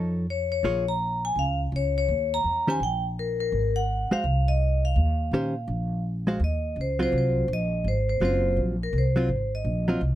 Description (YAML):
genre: jazz, small-group swing and bop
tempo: 166 BPM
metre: 4/4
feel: swing 63% on 8ths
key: Ab mixolydian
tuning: A4 = 439 Hz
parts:
  - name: hollow-body jazz guitar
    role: accompaniment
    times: 0.0-10.0 s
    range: Eb3 to F5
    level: -26 LUFS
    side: equal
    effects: none
  - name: upright bass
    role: bass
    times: 0.0-10.2 s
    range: Gb1 to Bb2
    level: -26 LUFS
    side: equal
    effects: none
  - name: vibraphone with medium hard mallets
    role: melody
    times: 0.3-10.0 s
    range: Bb4 to Bb5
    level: -27 LUFS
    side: left 1 dB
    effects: none
room: light reverb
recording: close, detailed microphones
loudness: -23 LUFS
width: side -13 dB against mid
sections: 0.0-6.4 A section; 6.4-10.2 B section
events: vibraphone solo 6.4-10.2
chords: 0.0 Faug7; 0.6 Bbm7; 2.1 Eb5; 3.5 Ab6; 5.0 Eb13; 6.4 Ab13